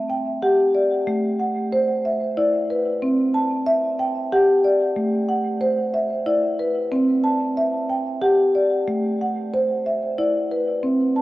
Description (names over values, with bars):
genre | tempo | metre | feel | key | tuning
world meditative, meditative tuned percussion | 62 BPM (dotted quarters) | 6/8 | straight | A dorian | A4 = 440 Hz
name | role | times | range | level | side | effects
marimba with soft mallets | solo | 0.0-11.2 s | A3 to A5 | -18 LUFS | equal | diffuse ambient delay
room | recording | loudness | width
wet cathedral reverb, RT60 6.5 s | worn, warbling old tape, cassette tape, warbly pitch drift | -18 LUFS | side -17 dB against mid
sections
0.0-11.2 A section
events
none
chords
0.0 C (rootless); 1.1 Am; 3.0 C; 5.0 Am; 6.9 C; 8.9 Am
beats
0.10 | 1.08 2.05 | 3.02 4.00 | 4.97 5.95 | 6.92 7.90 | 8.88 9.86 | 10.84